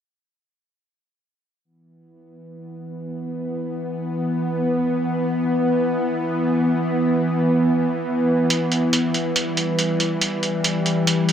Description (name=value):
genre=deep dubstep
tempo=free time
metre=none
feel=none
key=E minor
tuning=A4 = 441 Hz
part: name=bowed-like drone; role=sustained chords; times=2.8-11.3 s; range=E3 to B3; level=-20 LUFS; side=equal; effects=built-in reverb
part: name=electronic hi-hat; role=drums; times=8.5-11.3 s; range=none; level=-23 LUFS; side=right 2 dB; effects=overdrive, low-pass filter on hats, low-pass filter on room
room=moderate huge ambient reverb, RT60 5.3 s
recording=none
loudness=-19 LUFS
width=side -9 dB against mid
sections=1.6-11.3 A section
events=none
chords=1.6 Em